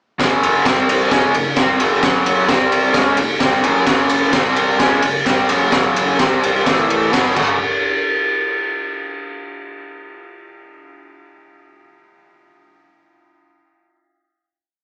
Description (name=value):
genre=garage rock duo or trio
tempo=129 BPM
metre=4/4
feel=straight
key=unclear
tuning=A4 = 440 Hz
part: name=raw garage guitar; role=riff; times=0.2-7.6 s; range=F#2 to F#4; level=-18 LUFS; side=equal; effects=overdrive
part: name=raw garage drum kit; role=drums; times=0.2-7.5 s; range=crash cymbal, kick drum, ride cymbal, snare drum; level=-20 LUFS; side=equal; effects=none
room=moderate large studio reverb, RT60 1.0 s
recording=band playing live in one room, small speaker sound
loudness=-16 LUFS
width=mono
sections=0.2-7.6 riff; 7.6-9.5 final hit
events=none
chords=0.2 F#5; 0.7 C5; 1.1 F#5; 2.5 C5; 2.9 F#5; 4.3 C5; 4.8 F#5; 6.2 C5; 6.7 A5; 7.1 B5; 7.4 F#m; 7.6 N.C.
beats=| 0.20 0.65 1.11 1.57 | 2.03 2.48 2.94 3.40 | 3.87 4.33 4.79 5.26 | 5.72 6.19 6.66 7.13